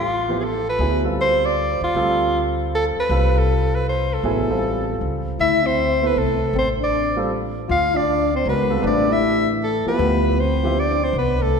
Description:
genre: jazz.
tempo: 157 BPM.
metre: 3/4.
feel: swing 66% on 8ths.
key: D dorian.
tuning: A4 = 441 Hz.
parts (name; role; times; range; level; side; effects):
breathy soprano saxophone; melody; 0.0-11.6 s; F4 to F5; -21 LUFS; right 1 dB; none.
upright bass; bass; 0.0-11.6 s; A1 to Eb2; -24 LUFS; equal; none.
warm upright piano; accompaniment; 0.3-10.8 s; F3 to C5; -25 LUFS; right 1 dB; none.
mellow trombone; second line; 5.4-11.6 s; A3 to F4; -23 LUFS; left 5 dB; none.
room: wet concert hall reverb, RT60 2.0 s.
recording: recorded in a church or concert hall.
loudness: -17 LUFS.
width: side -6 dB against mid.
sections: 0.0-11.6 A section.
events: none.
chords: 0.0 Dmadd9 (rootless); 0.8 F/D; 5.4 Dm9; 10.0 F.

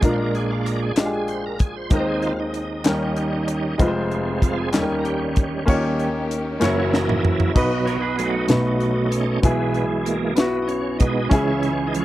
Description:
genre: slow gospel.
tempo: 64 BPM (dotted quarters).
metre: 6/8.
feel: straight.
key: B major from 7.6 s.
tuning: A4 = 439 Hz.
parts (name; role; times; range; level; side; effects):
warm baby grand piano; accompaniment; 0.0-12.0 s; F1 to Db5; -22 LUFS; left 1 dB; none.
bright tonewheel organ; sustained chords; 0.0-12.0 s; Bb2 to C5; -24 LUFS; right 3 dB; fast rotary speaker, overdrive, chorus vibrato.
tight funk drum kit; drums; 0.0-12.0 s; crash cymbal, hi-hat, kick drum, snare drum, toms; -20 LUFS; equal; none.
group handclap; percussion; 1.0-6.9 s; none; -30 LUFS; left 8 dB; none.
warm studio string section; sustained chords; 5.7-7.6 s; Fb3 to G4; -35 LUFS; equal; none.
clean electric guitar; second line; 7.6-8.6 s; D#4 to D#5; -28 LUFS; right 5 dB; none.
room: little or no reverb.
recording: dry, close 1970s-style studio recording.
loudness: -19 LUFS.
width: side -15 dB against mid.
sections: 0.0-5.7 A section; 5.7-7.6 B section; 7.6-12.0 C section.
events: tonewheel organ solo 0.0-5.7, 5.7-7.6, 7.6-12.0; drum fill 6.6-7.6.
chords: 0.0 Bb7; 1.9 Ab/Eb; 2.9 Eb7; 3.8 Fm; 4.7 Eb7; 6.6 Gb7; 7.6 B7; 9.4 E/B; 11.3 C#m.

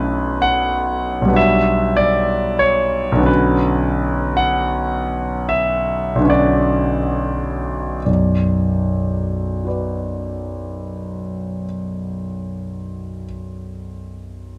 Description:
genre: classical, impressionist solo piano.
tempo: 31-50 BPM.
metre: 3/4.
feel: rubato.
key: B minor.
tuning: A4 = 440 Hz.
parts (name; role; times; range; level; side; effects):
clear concert grand piano; solo; 0.0-14.6 s; B1 to F#5; -19 LUFS; equal; none.
room: light reverb.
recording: close, detailed microphones.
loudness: -19 LUFS.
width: mono.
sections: 0.0-8.1 A section; 8.1-12.8 B section.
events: slowing down 0.0-8.1.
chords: 0.0 Bm11; 1.4 Gmaj7/B; 3.3 Bmadd9; 8.1 Bm.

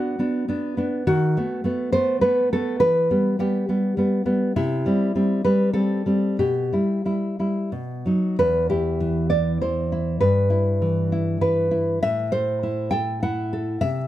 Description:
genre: romantic piece for solo classical guitar.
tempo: 89-105 BPM.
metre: 3/4.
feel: rubato.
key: E minor.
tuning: A4 = 441 Hz.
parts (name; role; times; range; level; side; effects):
nylon-string guitar; solo; 0.0-14.1 s; E2 to G5; -20 LUFS; equal; none.
room: light reverb.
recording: close, detailed microphones.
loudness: -20 LUFS.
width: side -14 dB against mid.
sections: 0.0-8.4 A section; 8.4-14.1 B section.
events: none.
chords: 0.0 Bm; 1.1 B7/D#; 2.8 Em; 4.6 C; 6.4 Em/B; 7.7 B; 8.4 N.C.; 10.2 Em/G; 12.0 Am.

